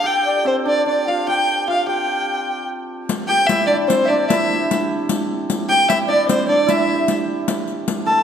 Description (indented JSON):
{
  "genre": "medieval dance",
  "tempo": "100 BPM (dotted quarters)",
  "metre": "6/8",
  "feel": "straight",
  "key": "unclear",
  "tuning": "A4 = 443 Hz",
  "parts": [
    { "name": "dark fiddle", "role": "melody", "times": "0.0-8.2 s", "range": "C5 to A5", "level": "-18 LUFS", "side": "right 1 dB", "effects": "none" },
    { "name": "hammered dulcimer", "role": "second line", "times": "0.0-8.2 s", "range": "C4 to A4", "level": "-23 LUFS", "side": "right 3 dB", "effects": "none" },
    { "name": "long shakuhachi", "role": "second line", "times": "0.0-8.2 s", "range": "C5 to A5", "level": "-23 LUFS", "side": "left 4 dB", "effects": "none" },
    { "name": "riq", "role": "percussion", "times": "3.1-8.1 s", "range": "none", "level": "-23 LUFS", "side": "left 4 dB", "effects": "none" }
  ],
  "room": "wet scoring stage reverb, RT60 1.5 s",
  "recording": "none",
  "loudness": "-16 LUFS",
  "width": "side -8 dB against mid",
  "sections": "0.0-3.1 A section; 3.1-8.2 B section",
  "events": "none",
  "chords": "none"
}